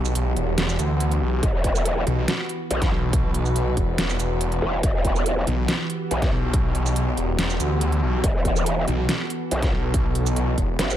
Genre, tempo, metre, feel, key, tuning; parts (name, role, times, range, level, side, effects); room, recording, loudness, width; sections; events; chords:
heavy wobble dubstep; 141 BPM; 4/4; half-time; E minor; A4 = 440 Hz
evolving wavetable pad; sustained chords; 0.0-11.0 s; E3 to B4; -29 LUFS; right 1 dB; chorus, built-in reverb, sidechain pumping
snarling distorted saw bass; bass; 0.0-10.8 s; E1 to D2; -23 LUFS; equal; distortion, overdrive
dubstep drum kit; drums; 0.1-11.0 s; hi-hat, shaker, snare drum; -27 LUFS; right 1 dB
growl bass; bass; 1.4-11.0 s; E1 to B1; -23 LUFS; equal; chorus, overdrive
electronic kick drum; drums; 1.4-10.7 s; -23 LUFS; equal
reverse cymbal; sound effects; 10.9-11.0 s; barely audible
little or no reverb; -20 LUFS; side -11 dB against mid
0.0-11.0 A section
0.0 Emadd9